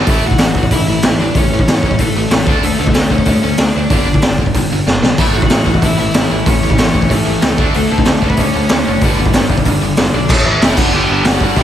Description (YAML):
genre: punk rock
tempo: 188 BPM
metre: 4/4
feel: straight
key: A mixolydian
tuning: A4 = 436 Hz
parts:
  - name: distorted electric guitar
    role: riff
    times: 0.0-0.1, 5.2-11.6 s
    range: G2 to D4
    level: -22 LUFS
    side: right 1 dB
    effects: distortion, slapback echo
  - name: tight distorted guitar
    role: riff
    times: 0.0-11.6 s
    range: G2 to D4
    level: -19 LUFS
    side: left 10 dB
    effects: distortion, slapback echo
  - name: tight distorted guitar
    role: riff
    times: 0.0-11.6 s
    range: G2 to D4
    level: -20 LUFS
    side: right 9 dB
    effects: distortion, slapback echo
  - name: modern bright picked electric bass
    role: bass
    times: 0.0-11.6 s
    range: F#1 to D2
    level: -20 LUFS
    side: equal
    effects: none
  - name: biting overdriven guitar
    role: melody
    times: 0.1-11.6 s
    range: A3 to G5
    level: -21 LUFS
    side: left 1 dB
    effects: slapback echo
  - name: raw garage drum kit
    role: drums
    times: 0.1-11.6 s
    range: crash cymbal, hi-hat, kick drum, snare drum, splash cymbal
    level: -13 LUFS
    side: equal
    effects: none
room: light reverb, small room ambience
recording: none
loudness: -10 LUFS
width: side -10 dB against mid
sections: 0.1-10.3 A section; 10.3-11.6 B section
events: drum fill 4.9-5.2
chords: 0.1 A; 2.5 D5; 3.9 G5; 5.2 A; 7.6 D5; 9.0 G; 10.3 A; 10.8 G5